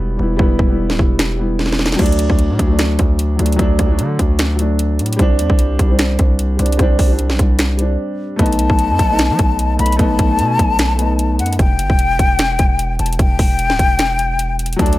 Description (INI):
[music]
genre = hip hop, trap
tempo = 150 BPM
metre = 4/4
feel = half-time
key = E minor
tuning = A4 = 440 Hz
[part]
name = dark grand piano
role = accompaniment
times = 0.0-11.6, 14.8-15.0 s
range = F#3 to E4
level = -19 LUFS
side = equal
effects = none
[part]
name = distorted 808-style bass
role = bass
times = 0.0-15.0 s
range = D1 to F#3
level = -18 LUFS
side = equal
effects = distortion
[part]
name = trap drum kit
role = drums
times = 0.4-15.0 s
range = crash cymbal, finger snaps, hi-hat, kick drum, snare drum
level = -16 LUFS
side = equal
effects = none
[part]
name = breathy concert flute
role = second line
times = 8.4-15.0 s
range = F#5 to B5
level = -18 LUFS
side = left 4 dB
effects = digital delay
[sound]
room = little or no reverb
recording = none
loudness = -13 LUFS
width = side -16 dB against mid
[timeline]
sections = 0.0-15.0 A section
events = break 0.0-2.0, 8.0-8.4; drum fill 1.6-2.0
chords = 0.0 Em; 2.0 D; 5.2 Csus2; 8.4 B7; 11.6 Em